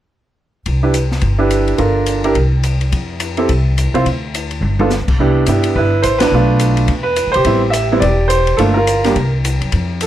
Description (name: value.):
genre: jazz piano trio.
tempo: 212 BPM.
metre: 4/4.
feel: swing 60% on 8ths.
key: C major.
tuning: A4 = 440 Hz.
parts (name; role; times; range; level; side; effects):
upright bass; bass; 0.7-10.1 s; E1 to G2; -16 LUFS; equal; none.
open jazz drum kit; drums; 0.7-10.1 s; crash cymbal, hi-hat, kick drum, ride cymbal, snare drum, toms; -22 LUFS; left 3 dB; none.
clear concert grand piano; melody; 0.8-10.1 s; G3 to E5; -14 LUFS; right 2 dB; none.
room: light reverb.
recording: none.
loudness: -12 LUFS.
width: side -12 dB against mid.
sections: 0.7-5.2 A section; 5.2-10.1 B section.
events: drum fill 4.6; band accent 6.2.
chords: 0.7 Cmaj7; 1.8 Gm7; 2.4 N.C.; 2.9 F5; 4.1 N.C.; 4.6 G; 5.2 Cmaj7; 6.3 Bm7b5; 6.9 E5; 7.5 Am7; 8.6 Gm7; 9.2 N.C..